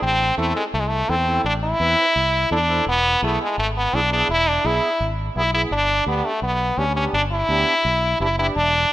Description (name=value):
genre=latin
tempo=169 BPM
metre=4/4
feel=straight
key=A harmonic minor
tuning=A4 = 440 Hz
part: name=stopped French horn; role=melody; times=0.0-8.9 s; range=G#3 to E4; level=-18 LUFS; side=equal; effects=none
part: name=accordion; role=accompaniment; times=0.0-8.6 s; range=B3 to B4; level=-29 LUFS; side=right 2 dB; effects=light tremolo tuning
part: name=fingered electric bass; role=bass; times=0.0-8.8 s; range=E1 to E2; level=-25 LUFS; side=equal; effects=none
room=moderate lush hall reverb, RT60 2.8 s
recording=rough home demo mix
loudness=-17 LUFS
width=side -14 dB against mid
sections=0.0-8.9 A section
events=none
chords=0.0 Am; 2.9 E; 5.7 G